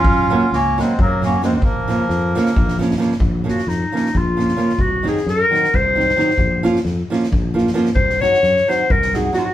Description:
balkan folk, Balkan wedding band; 265 BPM (eighths); 7/8; straight; Bb minor; A4 = 439 Hz
accordion; melody; 0.0-2.8 s; Bb3 to F4; -20 LUFS; right 3 dB
clear clarinet; second line; 0.0-9.5 s; F3 to Db5; -18 LUFS; left 2 dB
sustaining fretless electric bass; bass; 0.0-9.3 s; Bb1 to Gb2; -22 LUFS; left 1 dB
soft-mallet drum kit; percussion; 0.0-9.4 s; kick drum, snare drum; -22 LUFS; equal
nylon-string guitar; accompaniment; 0.3-9.5 s; Db3 to Gb4; -19 LUFS; right 2 dB
moderate studio reverb, RT60 0.7 s; band playing live in one room; -15 LUFS; side -12 dB against mid
0.0-3.2 A section; 3.2-9.5 B section
clarinet solo 3.2-9.5
0.0 Gb; 1.6 Bbm; 4.8 Cdim; 6.4 Bbm; 8.0 Cdim
| 0.04 0.27 0.49 0.72 0.94 1.17 1.40 | 1.62 1.85 2.07 2.30 2.52 2.75 2.98 | 3.20 3.43 3.66 3.88 4.11 4.33 4.56 | 4.79 5.01 5.24 5.47 5.70 5.92 6.15 | 6.38 6.60 6.83 7.05 7.28 7.51 7.73 | 7.96 8.19 8.41 8.64 8.87 9.09 9.32

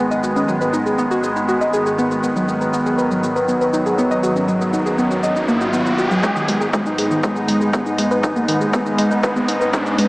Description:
melodic techno; 120 BPM; 4/4; straight; G# minor; A4 = 441 Hz
evolving wavetable pad; sustained chords; 0.0-10.1 s; G#2 to D#4; -20 LUFS; equal; chorus, built-in reverb, sidechain pumping
woody wave-folded pluck; arpeggios; 0.0-10.0 s; D#3 to D#5; -19 LUFS; equal; chorus, sidechain pumping, tape echo
swelling detuned saw bass; bass; 0.0-6.2 s; G#1; -35 LUFS; equal; sidechain pumping
electronic shaker and hi-hat; drums; 0.1-10.1 s; -31 LUFS; equal; overdrive, sidechain pumping on perc, studio reverb, sidechain pumping on hats
riser; sound effects; 4.0-10.1 s; -25 LUFS; equal
electronic kick drum; drums; 6.2-9.8 s; -21 LUFS; equal; overdrive, high-pass filter on kick, studio reverb
wet huge ambient reverb, RT60 8.4 s; dreamy mix soaked in reverb, small speaker sound; -16 LUFS; side -22 dB against mid
0.0-6.2 A section; 6.2-10.1 B section
riser 4.0-6.2, 6.2-10.1; build-up 6.2-10.1
0.0 B6/G#; 6.2 G#m
| 0.23 0.73 1.24 1.74 | 2.23 2.73 3.23 3.73 | 4.24 4.74 5.24 5.74 | 6.24 6.74 7.24 7.74 | 8.23 8.73 9.23 9.73

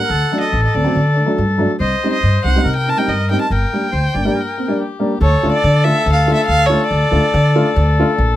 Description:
klezmer; 141 BPM; 4/4; straight; G harmonic minor, D harmonic minor from 5.2 s; A4 = 439 Hz
rich violin; melody; 0.0-8.1 s; C#5 to A5; -19 LUFS; right 1 dB
accordion; second line; 0.0-8.4 s; G4 to D5; -20 LUFS; left 5 dB
upright bass; bass; 0.1-8.4 s; G1 to D3; -16 LUFS; equal
dark upright piano; accompaniment; 0.3-8.1 s; F#3 to F4; -20 LUFS; equal
little or no reverb; -13 LUFS; side -13 dB against mid
0.0-5.2 A section; 5.2-8.4 B section
break 4.4-5.2
0.1 D; 1.8 Cm; 3.5 Gm; 5.2 Dm
| 0.10 0.52 0.95 1.38 | 1.81 2.23 2.66 3.09 | 3.51 3.94 4.37 4.79 | 5.22 5.64 6.07 6.49 | 6.91 7.34 7.76 8.18

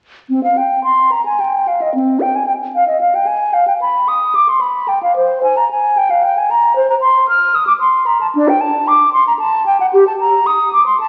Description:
classical, baroque-style fantasia for unaccompanied flute; 112 BPM; 3/4; rubato; C minor; A4 = 442 Hz
mellow hollow silver concert flute; solo; 0.3-11.1 s; C4 to F6; -14 LUFS; equal
wet recital hall reverb, RT60 1.9 s; very old 78 rpm record, vinyl crackle, nothing above 10.9 kHz; -14 LUFS; mono
0.3-11.1 A section
| 0.29 0.85 1.40 | 1.95 2.49 3.02 | 3.56 4.09 4.62 | 5.18 5.72 6.24 | 6.76 7.28 7.80 | 8.35 8.88 9.40 | 9.93 10.46 11.00

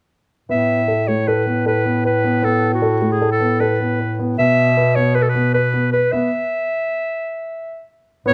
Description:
contemporary instrumental, chamber music in an uneven meter; 154 BPM; 5/4; straight; A4 = 438 Hz
bright clarinet; melody; 0.5-8.3 s; F#4 to E5; -21 LUFS; equal
dark concert grand piano; arpeggios; 0.5-8.3 s; A3 to B4; -23 LUFS; equal
warm bass clarinet; bass; 0.5-8.3 s; A2 to B2; -22 LUFS; equal
light reverb; close, detailed microphones; -18 LUFS; mono
0.5-8.3 A section
stop 6.3-8.3
0.5 Asus2; 4.4 Bsus4
| 0.49 0.88 1.27 1.66 2.05 | 2.44 2.83 3.22 3.61 3.99 | 4.38 4.77 5.16 5.55 5.94 | 6.32 6.71 7.10 7.49 7.88 | 8.26

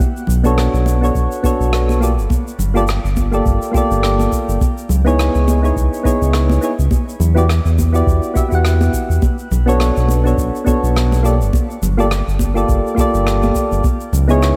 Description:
sunset chillout; 104 BPM; 4/4; swing 57% on 16ths; B minor; A4 = 436 Hz
electronic kick drum; drums; 0.0-14.0 s; -20 LUFS; equal
shaker and rim click; drums; 0.0-14.6 s; -29 LUFS; equal
round analog bass; bass; 0.3-14.5 s; G1 to E2; -17 LUFS; equal
congas; percussion; 0.3-14.4 s; -27 LUFS; equal
soft electric-piano-like synth keys; accompaniment; 0.4-14.6 s; Bb3 to F#5; -20 LUFS; equal; chorus, digital delay, shimmer reverb
light reverb, small room ambience; -16 LUFS; mono
0.0-14.6 A section
0.0 Bm9; 2.0 Gm9; 4.6 C#m9; 6.9 Em9; 9.2 Bm9; 11.2 Gm9; 13.8 C#m9
0.57 1.15 1.72 | 2.30 2.88 3.46 4.03 | 4.61 5.19 5.76 6.34 | 6.92 7.49 8.07 8.65 | 9.22 9.80 10.38 10.96 | 11.53 12.11 12.69 13.26 | 13.84 14.42

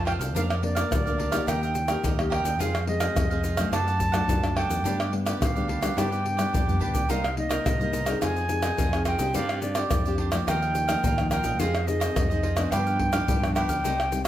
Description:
samba and choro; 107 BPM; 4/4; straight; A4 = 440 Hz
reedy silver concert flute; melody; 0.0-14.3 s; D5 to A5; -30 LUFS; right 1 dB
cavaquinho; accompaniment; 0.0-14.3 s; D4 to G5; -34 LUFS; right 6 dB
nylon-string guitar; accompaniment; 0.0-14.3 s; F#2 to Bb4; -31 LUFS; left 2 dB
modern bright fingered electric bass; bass; 0.0-14.3 s; Bb1 to G2; -29 LUFS; equal
pandeiro, tamborim, egg shaker and surdo; percussion; 0.1-14.3 s; -27 LUFS; left 1 dB
moderate large studio reverb, RT60 1.1 s; -23 LUFS; side -12 dB against mid
0.0-14.3 A section
drum fill 6.4-7.1
0.3 Bb/F; 1.5 Eb; 2.6 Fm; 3.7 D/F#; 4.8 G; 7.1 Cm7; 8.2 Fm7; 9.3 Gsus4; 10.5 Ebsus2; 11.6 Fm7; 12.7 G7
| 0.35 0.91 1.47 2.04 | 2.60 3.16 3.72 4.29 | 4.85 5.41 5.97 6.54 | 7.10 7.66 8.22 8.79 | 9.35 9.91 10.47 11.04 | 11.60 12.16 12.72 13.29 | 13.85

